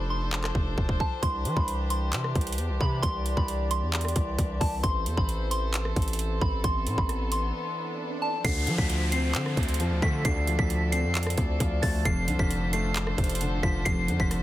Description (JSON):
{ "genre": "hip hop, trap", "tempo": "133 BPM", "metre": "4/4", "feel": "half-time", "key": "D dorian", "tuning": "A4 = 439 Hz", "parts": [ { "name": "soft synth bell", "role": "melody", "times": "0.0-14.4 s", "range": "A5 to C7", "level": "-32 LUFS", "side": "equal", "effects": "chorus, phaser" }, { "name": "warm chamber string section", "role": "sustained chords", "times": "0.0-14.4 s", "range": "E3 to D5", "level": "-35 LUFS", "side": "equal", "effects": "none" }, { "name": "distorted 808-style bass", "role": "bass", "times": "0.0-14.4 s", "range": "E1 to F3", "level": "-29 LUFS", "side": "equal", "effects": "distortion" }, { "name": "trap drum kit", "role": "drums", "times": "0.3-14.4 s", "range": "handclaps, hi-hat, kick drum, rim click", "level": "-28 LUFS", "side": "equal", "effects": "none" }, { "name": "swell and downlifter", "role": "sound effects", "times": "7.4-12.1 s", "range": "none", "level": "-37 LUFS", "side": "right 1 dB", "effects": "none" }, { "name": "dark concert grand piano", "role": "accompaniment", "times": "8.4-14.4 s", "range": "F2 to C4", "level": "-31 LUFS", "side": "left 1 dB", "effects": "none" } ], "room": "little or no reverb", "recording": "dense, heavily limited modern master", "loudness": "-24 LUFS", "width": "side -14 dB against mid", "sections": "0.0-8.4 A section; 8.4-14.4 B section", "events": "break 0.0-1.2, 7.5-8.4; swell 7.4-8.4", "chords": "0.0 F6; 1.2 Cadd9; 4.8 Am; 8.4 Dm7; 12.1 F6", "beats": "0.33 0.78 | 1.23 1.68 2.13 2.58 | 3.03 3.48 3.93 4.38 | 4.84 5.29 5.74 6.19 | 6.64 7.09 7.54 7.99 | 8.45 8.90 9.35 9.80 | 10.25 10.70 11.15 11.60 | 12.05 12.51 12.96 13.41 | 13.86 14.31" }